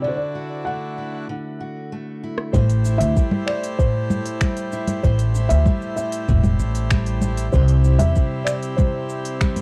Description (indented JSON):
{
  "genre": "folktronica",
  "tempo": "96 BPM",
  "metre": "4/4",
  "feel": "straight",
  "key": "A dorian",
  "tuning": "A4 = 440 Hz",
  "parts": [
    { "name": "felt-muted upright piano", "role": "melody", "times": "0.0-9.6 s", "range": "C5 to F#5", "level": "-29 LUFS", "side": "equal", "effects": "tape echo" },
    { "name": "accordion", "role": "sustained chords", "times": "0.0-9.6 s", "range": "C3 to C5", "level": "-34 LUFS", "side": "equal", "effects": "none" },
    { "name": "fingerpicked steel-string acoustic guitar", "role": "arpeggios", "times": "0.0-9.6 s", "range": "A2 to C5", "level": "-29 LUFS", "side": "equal", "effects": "none" },
    { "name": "organic electronic drum kit", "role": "drums", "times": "2.4-9.6 s", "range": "congas, finger snaps, hi-hat, rim click, shaker", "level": "-28 LUFS", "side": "equal", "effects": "studio reverb" },
    { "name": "upright bass", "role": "bass", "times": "2.5-8.1 s", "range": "E1 to E2", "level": "-20 LUFS", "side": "equal", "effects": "none" },
    { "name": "electronic kick drum", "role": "drums", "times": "2.5-9.5 s", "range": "none", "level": "-21 LUFS", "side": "equal", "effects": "studio reverb" }
  ],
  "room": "little or no reverb",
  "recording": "dry, close 1970s-style studio recording",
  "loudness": "-20 LUFS",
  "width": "mono",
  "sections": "0.0-2.5 A section; 2.5-9.6 B section",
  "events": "break 1.3-2.5; drum fill 2.2-2.5",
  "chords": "0.0 Dadd9; 2.5 Am7; 7.5 C"
}